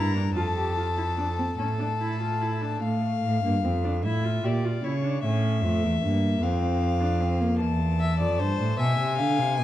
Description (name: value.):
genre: classical, baroque-style fugue for string quartet.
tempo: 50 BPM (dotted quarters).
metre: 6/8.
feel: straight.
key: D minor.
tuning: A4 = 440 Hz.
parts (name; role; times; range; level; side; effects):
warm violin; melody; 0.0-9.6 s; C#5 to Bb5; -30 LUFS; left 7 dB; none.
warm violin; second line; 0.0-2.8, 8.0-9.6 s; A4 to G#5; -31 LUFS; left 2 dB; none.
rich viola; accompaniment; 0.0-7.6 s; A3 to G4; -30 LUFS; right 1 dB; none.
rich cello; bass; 0.0-9.6 s; E2 to D3; -25 LUFS; right 1 dB; none.
room: moderate recital hall reverb, RT60 1.4 s.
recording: dark, warm production, vinyl crackle.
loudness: -23 LUFS.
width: side -13 dB against mid.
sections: 0.0-2.8 A section; 2.8-9.6 B section.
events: none.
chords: 0.4 Dm/F (rootless); 1.6 A5; 2.8 Dm/A (rootless); 4.0 A; 5.2 A7; 6.4 Dm/F; 7.6 Am/E; 8.8 E/B.